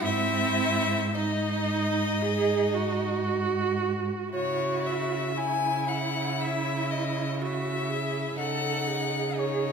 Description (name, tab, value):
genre	classical, slow romantic movement for string quartet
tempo	54-62 BPM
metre	4/4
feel	rubato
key	C# minor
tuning	A4 = 440 Hz
part	clear violin	melody	0.0-9.7 s	C#5 to G#5	-30 LUFS	left 6 dB	none
part	rich violin	second line	0.0-9.7 s	D#4 to E4	-34 LUFS	equal	none
part	rich viola	accompaniment	0.0-9.7 s	B#3 to A4	-30 LUFS	right 6 dB	none
part	rich cello	bass	0.0-9.7 s	G#2 to C#3	-31 LUFS	right 2 dB	none
room	wet recital hall reverb, RT60 1.5 s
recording	minimal, uncompressed stereo recording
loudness	-25 LUFS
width	side -6 dB against mid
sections	0.0-4.3 A section; 4.3-9.7 B section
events	none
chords	0.0 G#; 4.3 C#m; 8.4 D#m7b5/C#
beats	| 0.02 1.13 2.21 3.27 | 4.33 5.35 6.39 7.39 | 8.37 9.35